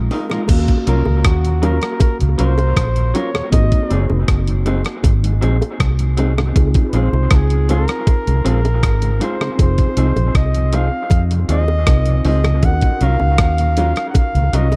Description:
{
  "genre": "lovers rock reggae",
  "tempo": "79 BPM",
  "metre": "4/4",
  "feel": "straight",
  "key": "Eb dorian",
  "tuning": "A4 = 440 Hz",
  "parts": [
    { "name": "mellow tine electric piano", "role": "accompaniment", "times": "0.0-14.8 s", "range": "Ab3 to F5", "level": "-28 LUFS", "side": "equal", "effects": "dub echo" },
    { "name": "vintage muted fingered electric bass", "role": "bass", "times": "0.0-14.8 s", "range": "F1 to F2", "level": "-18 LUFS", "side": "equal", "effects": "none" },
    { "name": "mellow tonewheel organ", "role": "accompaniment", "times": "0.1-14.6 s", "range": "Eb2 to Gb4", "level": "-31 LUFS", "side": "equal", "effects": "none" },
    { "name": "electric guitar through a small old amp", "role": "stabs", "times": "0.1-14.8 s", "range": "F3 to Bb4", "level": "-28 LUFS", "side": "equal", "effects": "dub echo" },
    { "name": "gated 80s digital drum machine", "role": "drums", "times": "0.1-14.8 s", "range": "crash cymbal, hi-hat, kick drum, rim click", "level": "-18 LUFS", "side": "equal", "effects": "none" },
    { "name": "bongos", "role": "percussion", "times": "0.1-14.8 s", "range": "none", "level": "-30 LUFS", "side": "equal", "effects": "none" },
    { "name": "warm flugelhorn", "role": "melody", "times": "0.9-14.8 s", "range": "Gb4 to Gb5", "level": "-26 LUFS", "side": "equal", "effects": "tape echo" }
  ],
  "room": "little or no reverb",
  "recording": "dark, warm production",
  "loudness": "-16 LUFS",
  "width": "mono",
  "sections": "0.5-14.8 A section",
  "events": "none",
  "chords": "0.5 Ebm9; 3.5 Ab7; 6.6 Dbmaj7; 9.6 Fm7; 12.6 Ebm9"
}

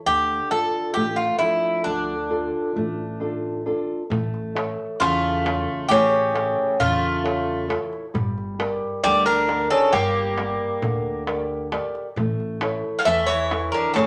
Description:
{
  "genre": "greek folk, Greek bouzouki band",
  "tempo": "134 BPM (eighths)",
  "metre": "9/8",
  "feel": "straight",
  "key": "unclear",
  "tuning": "A4 = 441 Hz",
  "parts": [
    { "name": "Greek bouzouki", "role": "melody", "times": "0.1-14.1 s", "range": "D4 to F5", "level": "-25 LUFS", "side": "equal", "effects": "none" },
    { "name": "flamenco guitar", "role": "accompaniment", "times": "0.1-14.1 s", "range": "C#3 to E5", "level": "-29 LUFS", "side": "equal", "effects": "none" },
    { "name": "upright bass", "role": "bass", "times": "0.1-14.1 s", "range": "G1 to E2", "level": "-34 LUFS", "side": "equal", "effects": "none" },
    { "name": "darbuka", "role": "percussion", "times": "4.1-14.1 s", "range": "none", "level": "-32 LUFS", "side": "equal", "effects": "none" },
    { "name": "Greek bouzouki", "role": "second line", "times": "5.0-14.1 s", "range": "C#3 to Bb3", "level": "-26 LUFS", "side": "equal", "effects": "none" }
  ],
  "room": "wet studio reverb, RT60 0.7 s",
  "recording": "none",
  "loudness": "-23 LUFS",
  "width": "mono",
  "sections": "0.0-4.1 A section; 4.1-14.1 B section",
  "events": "none",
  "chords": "0.1 Dm; 4.1 A; 8.1 Gm; 12.2 A"
}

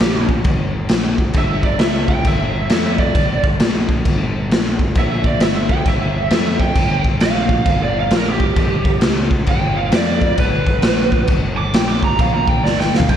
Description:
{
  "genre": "blues rock power trio and southern rock",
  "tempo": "133 BPM",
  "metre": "4/4",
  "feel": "swing 63% on 8ths",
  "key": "unclear",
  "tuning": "A4 = 440 Hz",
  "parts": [
    { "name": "lead guitar through a small cranked amp", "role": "second line", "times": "0.0-13.2 s", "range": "G4 to D6", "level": "-21 LUFS", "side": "right 4 dB", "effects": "overdrive, slapback echo" },
    { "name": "fuzz fingered electric bass", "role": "bass", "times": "0.0-13.2 s", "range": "G1 to F2", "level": "-21 LUFS", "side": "equal", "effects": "overdrive" },
    { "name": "raw garage drum kit", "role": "drums", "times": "0.0-13.2 s", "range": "crash cymbal, kick drum, snare drum, toms", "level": "-16 LUFS", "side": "equal", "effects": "none" }
  ],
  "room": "light reverb, small room ambience",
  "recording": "none",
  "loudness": "-14 LUFS",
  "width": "side -9 dB against mid",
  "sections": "0.0-13.2 A section",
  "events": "lead electric guitar solo 0.0-13.2; drum fill 12.6-13.1",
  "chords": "0.0 G5"
}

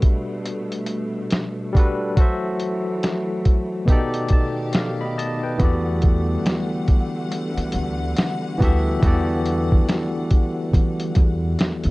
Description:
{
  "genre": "lo-fi hip hop",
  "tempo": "70 BPM",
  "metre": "4/4",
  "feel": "swing 59% on 16ths",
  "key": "E minor",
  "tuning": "A4 = 439 Hz",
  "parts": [
    { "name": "barky tine electric piano", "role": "accompaniment", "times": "0.0-11.9 s", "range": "B2 to C6", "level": "-24 LUFS", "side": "left 1 dB", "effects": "overdrive, medium stereo tremolo, cassette tape" },
    { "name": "clear symphonic string section", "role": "sustained chords", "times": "0.0-11.9 s", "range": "B2 to F#5", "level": "-30 LUFS", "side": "equal", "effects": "none" },
    { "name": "lo-fi sampler-style drum kit", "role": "drums", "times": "0.0-11.9 s", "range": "hi-hat, kick drum, snare drum", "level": "-18 LUFS", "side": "equal", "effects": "none" },
    { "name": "upright bass", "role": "bass", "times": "5.6-11.9 s", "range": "D2 to E3", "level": "-23 LUFS", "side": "equal", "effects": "none" }
  ],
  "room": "light reverb",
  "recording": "dark, warm production, nothing above 11.0 kHz",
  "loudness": "-19 LUFS",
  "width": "side -21 dB against mid",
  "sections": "0.0-11.9 A section",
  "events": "break 0.0-5.6; tine electric piano fill 3.9-5.6",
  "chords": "0.0 Gmaj9; 2.2 F#m7b5; 3.9 B7alt; 5.6 Em11"
}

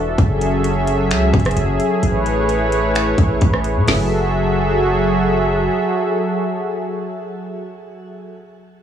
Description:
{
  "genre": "hip hop, atmospheric cloud-rap",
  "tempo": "130 BPM",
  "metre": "4/4",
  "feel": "half-time",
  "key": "F# minor",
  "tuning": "A4 = 438 Hz",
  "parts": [
    { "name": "warm analog pad", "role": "sustained chords", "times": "0.0-8.3 s", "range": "E3 to E5", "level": "-18 LUFS", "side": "equal", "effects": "chorus, sidechain pumping" },
    { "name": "long sustained 808-style bass", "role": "bass", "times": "0.0-5.7 s", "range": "E1 to A2", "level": "-20 LUFS", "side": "equal", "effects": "none" },
    { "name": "trap drum kit", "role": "drums", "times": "0.2-4.0 s", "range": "finger snaps, hi-hat, kick drum, rim click, snare drum", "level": "-18 LUFS", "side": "equal", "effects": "none" }
  ],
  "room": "digital ambience",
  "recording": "dry, gritty hardware recording, cassette tape, small room ambience",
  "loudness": "-15 LUFS",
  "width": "side -9 dB against mid",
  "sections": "0.0-3.9 A section; 3.9-7.6 B section",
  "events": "none",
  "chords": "0.2 F#m9; 2.0 Amaj9; 3.9 F#m9"
}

